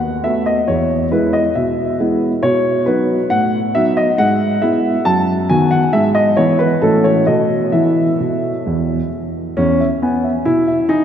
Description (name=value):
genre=classical-period piano sonatina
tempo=136 BPM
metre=4/4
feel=straight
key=E major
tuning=A4 = 440 Hz
part: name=warm baby grand piano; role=solo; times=0.0-11.0 s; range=D#2 to A5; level=-13 LUFS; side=equal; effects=none
room=wet cathedral reverb, RT60 5.9 s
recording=recorded in a church or concert hall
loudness=-13 LUFS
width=side -9 dB against mid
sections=0.0-9.6 A section; 9.6-11.0 B section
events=none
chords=0.0 B7/D#; 0.7 E; 2.4 B; 3.3 B7/A; 4.2 E/G#; 5.1 B7/F#; 5.9 E/G#; 6.8 F#m7/A; 7.3 B7; 7.7 E5; 9.6 E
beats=0.25 | 0.69 1.12 1.56 1.99 | 2.43 2.87 3.31 3.74 | 4.18 4.62 5.05 5.49 | 5.94 6.38 6.82 7.27 | 7.73 8.20 8.66 9.12 | 9.58 10.02 10.46 10.90